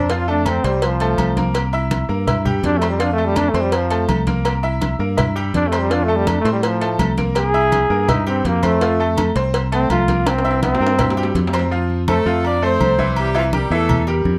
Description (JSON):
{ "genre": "latin, salsa", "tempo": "165 BPM", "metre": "4/4", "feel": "straight", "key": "F major", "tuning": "A4 = 440 Hz", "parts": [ { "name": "bright trombone", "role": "melody", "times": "0.0-11.3 s", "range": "F3 to Ab4", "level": "-22 LUFS", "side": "equal", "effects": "plate reverb" }, { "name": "bright grand piano", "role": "accompaniment", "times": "0.0-14.4 s", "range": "E3 to E6", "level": "-25 LUFS", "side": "equal", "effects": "none" }, { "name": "fingered electric bass", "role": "bass", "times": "0.0-14.4 s", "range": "C2 to A2", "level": "-23 LUFS", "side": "equal", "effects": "none" }, { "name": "congas", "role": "percussion", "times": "0.1-14.4 s", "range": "none", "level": "-25 LUFS", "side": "equal", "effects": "none" }, { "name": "cowbell", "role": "percussion", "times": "0.1-11.7 s", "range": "none", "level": "-29 LUFS", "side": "equal", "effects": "none" }, { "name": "agogo bells and timbales", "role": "percussion", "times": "0.5-14.3 s", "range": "none", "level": "-29 LUFS", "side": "equal", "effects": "none" }, { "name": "warm horn section", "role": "melody", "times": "12.1-14.1 s", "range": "F3 to D5", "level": "-23 LUFS", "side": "equal", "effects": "plate reverb" } ], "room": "moderate studio ambience, RT60 0.5 s", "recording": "dark, warm production", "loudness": "-18 LUFS", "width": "mono", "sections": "0.0-11.7 A section; 11.7-14.4 B section", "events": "trombone solo 0.0-11.7; drum fill 10.3-11.7", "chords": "0.1 F; 1.6 C7; 3.0 F; 4.5 C7; 5.9 F; 7.4 C7; 8.8 F; 10.3 C7; 11.7 F; 13.2 C7" }